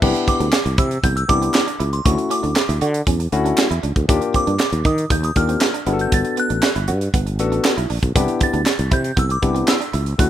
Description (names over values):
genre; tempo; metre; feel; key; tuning
early-eighties boogie funk; 118 BPM; 4/4; straight; C major; A4 = 442 Hz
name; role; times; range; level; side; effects
barky tine electric piano; accompaniment; 0.0-10.3 s; A3 to A4; -21 LUFS; left 4 dB; overdrive
sustaining fretless electric bass; bass; 0.0-10.3 s; G1 to Eb3; -20 LUFS; equal; none
tight funk drum kit; drums; 0.0-10.3 s; crash cymbal, handclaps, hi-hat, kick drum, snare drum; -20 LUFS; right 1 dB; none
electric guitar at the edge of break-up; riff; 0.2-10.0 s; Bb3 to F#4; -29 LUFS; right 9 dB; lush chorus
delicate synth tine bell; melody; 0.3-10.3 s; C6 to A6; -24 LUFS; right 1 dB; chorus
group handclap; percussion; 0.5-9.8 s; none; -29 LUFS; right 3 dB; none
room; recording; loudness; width
small room ambience; rough home demo mix; -16 LUFS; side -11 dB against mid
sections
0.0-10.3 A section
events
none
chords
0.0 Cmaj9; 2.1 Dmaj9; 4.1 Ebmaj9; 5.9 Gmaj9; 8.2 Cmaj9